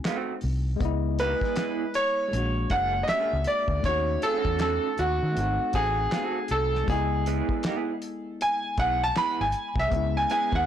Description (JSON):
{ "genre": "R&B, neo-soul", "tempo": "79 BPM", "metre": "4/4", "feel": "swing 64% on 16ths", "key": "C# minor", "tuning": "A4 = 435 Hz", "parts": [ { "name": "tine electric piano", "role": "accompaniment", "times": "0.0-10.7 s", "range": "G#3 to D#5", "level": "-34 LUFS", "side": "moving between left 13 dB and left 2 dB", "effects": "overdrive, auto-pan, plate reverb" }, { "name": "cloth-damped thuddy drum kit", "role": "drums", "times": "0.0-10.7 s", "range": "handclaps, hi-hat, kick drum, snare drum", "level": "-31 LUFS", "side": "equal", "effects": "none" }, { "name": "electric guitar through a small old amp", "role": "second line", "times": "0.1-10.7 s", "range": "A3 to A4", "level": "-32 LUFS", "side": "right 8 dB", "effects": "tremolo, plate reverb" }, { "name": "vintage muted fingered electric bass", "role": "bass", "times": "0.4-10.7 s", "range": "F#1 to D#3", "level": "-28 LUFS", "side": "equal", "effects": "none" }, { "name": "bright concert grand piano", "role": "melody", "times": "1.2-10.7 s", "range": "F#4 to B5", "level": "-26 LUFS", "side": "right 1 dB", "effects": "plate reverb, tape echo" } ], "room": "moderate studio ambience, RT60 0.5 s", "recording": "blown-out, overdriven recording, overdrive, faint mains hum", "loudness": "-24 LUFS", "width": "side -10 dB against mid", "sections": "0.8-10.7 A section", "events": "grand piano solo 0.8-10.7", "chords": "0.0 G#7b9 (rootless); 0.8 C#m7; 2.3 A#7alt; 3.8 D#m7b5; 5.4 G#7b9; 6.9 C#m7" }